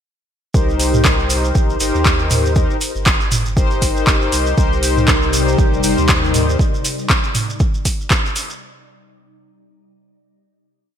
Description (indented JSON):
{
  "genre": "afro house",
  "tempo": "119 BPM",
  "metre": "4/4",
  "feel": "swing 57% on 16ths",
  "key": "C minor",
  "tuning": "A4 = 440 Hz",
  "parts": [
    { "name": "mellow synth brass", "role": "stabs", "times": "0.5-6.6 s", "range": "Eb4 to C5", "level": "-20 LUFS", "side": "left 3 dB", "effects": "chorus, sidechain pumping, digital delay" },
    { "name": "warm sub bass", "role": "bass", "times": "0.5-6.6 s", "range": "G1 to Eb2", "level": "-21 LUFS", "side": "equal", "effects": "sidechain pumping" },
    { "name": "electronic kick drum", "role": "drums", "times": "0.5-8.2 s", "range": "none", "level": "-17 LUFS", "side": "equal", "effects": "overdrive" },
    { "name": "shekere", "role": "percussion", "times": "0.5-8.6 s", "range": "none", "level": "-27 LUFS", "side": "right 3 dB", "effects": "none" },
    { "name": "afro-pop drum kit", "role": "drums", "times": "0.8-8.5 s", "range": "handclaps, hi-hat, toms", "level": "-19 LUFS", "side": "right 1 dB", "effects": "overdrive, gated reverb" },
    { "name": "ethereal airy pad", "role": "sustained chords", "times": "5.0-6.6 s", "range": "C3 to D5", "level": "-23 LUFS", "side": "left 2 dB", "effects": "ensemble chorus, built-in reverb, phaser, sidechain pumping" }
  ],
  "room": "light reverb, digital ambience",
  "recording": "bright 1980s-style digital production",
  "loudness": "-14 LUFS",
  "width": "side -9 dB against mid",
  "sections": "0.5-8.6 drop",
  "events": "drop 0.5-8.6",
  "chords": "0.5 Cm7"
}